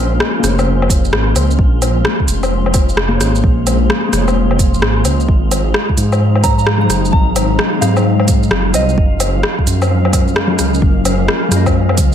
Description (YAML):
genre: future garage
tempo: 130 BPM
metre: 4/4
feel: swing 65% on 16ths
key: Bb minor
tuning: A4 = 440 Hz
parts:
  - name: mellow electric guitar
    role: accompaniment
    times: 0.0-12.1 s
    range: Gb3 to F5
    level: -20 LUFS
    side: left 4 dB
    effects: vintage 12-bit sampler grit, sidechain pumping, tape echo
  - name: granular cloud pad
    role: sustained chords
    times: 0.0-12.1 s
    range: Ab3 to C6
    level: -21 LUFS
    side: left 1 dB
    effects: built-in reverb, vintage 12-bit sampler grit, sidechain pumping
  - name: dark detuned saw bass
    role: bass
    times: 0.0-12.1 s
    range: F1 to Ab2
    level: -15 LUFS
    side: equal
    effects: sidechain pumping
  - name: wind-like tuned noise texture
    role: texture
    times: 0.0-12.1 s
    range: F3 to F5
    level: -26 LUFS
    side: right 3 dB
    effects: built-in reverb
  - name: organic electronic drum kit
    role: drums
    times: 0.2-12.1 s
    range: hi-hat, rim click, shaker, woodblock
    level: -17 LUFS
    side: left 1 dB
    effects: none
  - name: electronic kick drum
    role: drums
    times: 0.9-12.1 s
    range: none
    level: -14 LUFS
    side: equal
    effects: none
  - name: soft synth bell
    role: melody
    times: 6.4-9.0 s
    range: Eb5 to Bb5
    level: -21 LUFS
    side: right 2 dB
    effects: chorus, phaser, ping-pong delay
room: light reverb, digital ambience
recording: none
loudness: -11 LUFS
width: side -9 dB against mid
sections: 0.0-12.1 A section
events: none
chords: 0.0 Bbm9; 5.3 Ab7; 9.0 Gbmaj9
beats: 0.21 0.67 1.13 | 1.59 2.05 2.51 2.98 | 3.44 3.90 4.36 4.82 | 5.28 5.74 6.21 6.67 | 7.13 7.59 8.05 8.51 | 8.97 9.44 9.90 10.36 | 10.82 11.28 11.74